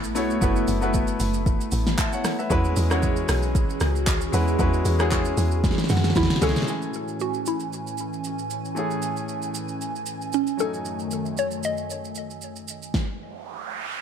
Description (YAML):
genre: amapiano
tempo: 115 BPM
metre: 4/4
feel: swing 55% on 16ths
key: unclear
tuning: A4 = 439 Hz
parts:
  - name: clear baby grand piano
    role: accompaniment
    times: 0.0-13.0 s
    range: E3 to B5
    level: -29 LUFS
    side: left 2 dB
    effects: none
  - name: airy breathy pad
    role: sustained chords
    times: 0.0-12.9 s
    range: F#2 to G#5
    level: -30 LUFS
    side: right 1 dB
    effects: chorus
  - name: deep log drum bass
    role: bass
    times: 0.0-6.5 s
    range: F#1 to F#2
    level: -24 LUFS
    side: equal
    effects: none
  - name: deep house drum kit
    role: drums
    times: 0.0-13.1 s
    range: handclaps, hi-hat, kick drum, rim click, shaker, snare drum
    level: -26 LUFS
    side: equal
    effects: none
  - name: mallet-like synth pluck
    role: melody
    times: 6.2-12.6 s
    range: C#4 to D#5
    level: -28 LUFS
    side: equal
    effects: chorus, phaser, ping-pong delay
  - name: noise sweep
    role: sound effects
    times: 13.2-14.0 s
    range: none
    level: -32 LUFS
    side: right 8 dB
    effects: none
room: light reverb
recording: none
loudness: -22 LUFS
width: side -8 dB against mid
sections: 0.0-6.7 A section; 6.7-14.0 B section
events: drop 0.0-6.7; drum fill 5.6-6.7; grand piano fill 5.6-6.7; noise sweep 13.2-14.0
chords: 0.0 B7sus4/F#; 2.5 E69; 6.7 Amaj7; 10.6 F#m69